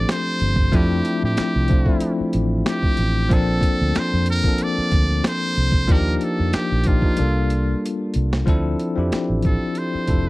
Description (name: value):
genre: R&B, neo-soul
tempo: 93 BPM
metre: 4/4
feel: swing 53% on 16ths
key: F major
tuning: A4 = 440 Hz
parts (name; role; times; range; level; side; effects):
- trumpet with metal mute; melody; 0.0-10.3 s; F4 to D5; -26 LUFS; right 1 dB; none
- bell-like tine electric piano; accompaniment; 0.0-10.3 s; F3 to A4; -22 LUFS; left 2 dB; medium stereo tremolo
- vintage muted fingered electric bass; bass; 0.0-10.3 s; F1 to A2; -21 LUFS; right 1 dB; none
- boom bap sampler-style drum kit; drums; 0.1-10.2 s; finger snaps, hi-hat, kick drum, snare drum; -20 LUFS; right 1 dB; none
room: little or no reverb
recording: dry, close 1970s-style studio recording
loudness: -17 LUFS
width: side -20 dB against mid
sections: 0.0-8.5 A section; 8.5-10.3 B section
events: drum fill 7.8-8.5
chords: 0.0 F69; 3.3 Bbmaj9; 5.9 Ebmaj9; 7.2 C13sus4; 8.5 Dm9